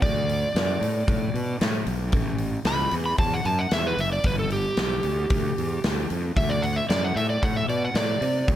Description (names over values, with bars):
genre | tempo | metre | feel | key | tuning
blues rock power trio and southern rock | 114 BPM | 4/4 | straight | D major | A4 = 440 Hz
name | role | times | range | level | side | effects
overdriven slide guitar | melody | 0.0-8.5 s | G4 to B5 | -26 LUFS | right 1 dB | none
fuzz fingered electric bass | bass | 0.0-8.6 s | F#1 to C3 | -27 LUFS | equal | overdrive
big rock drum kit | drums | 0.0-8.6 s | hi-hat, kick drum, snare drum | -26 LUFS | equal | none
room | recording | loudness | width
light reverb | none | -22 LUFS | side -12 dB against mid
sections
0.0-8.6 A section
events
electric slide guitar solo 0.0-8.6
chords
0.0 D; 2.1 A; 4.3 G7; 6.4 D7